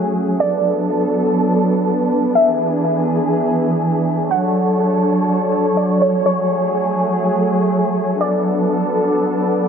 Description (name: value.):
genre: hip hop.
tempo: free time.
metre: none.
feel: none.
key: unclear.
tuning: A4 = 440 Hz.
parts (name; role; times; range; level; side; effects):
warm symphonic string section; sustained chords; 0.0-9.7 s; E3 to C#5; -16 LUFS; equal; none.
drifting glass-harmonics texture; texture; 0.0-9.7 s; A3 to F#5; -24 LUFS; equal; chorus, built-in reverb.
warbly dusty pluck; melody; 0.4-8.7 s; C#5 to F#5; -20 LUFS; equal; chorus, phaser, digital delay.
room: moderate lush hall reverb, RT60 2.6 s.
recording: low-pass filter.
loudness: -15 LUFS.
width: side -7 dB against mid.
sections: 0.0-9.7 A section.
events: filter sweep 0.0-9.7.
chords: 0.4 Bm7; 2.4 E7; 4.3 Dmaj7; 6.3 F#madd9; 8.2 Bm7.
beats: free time.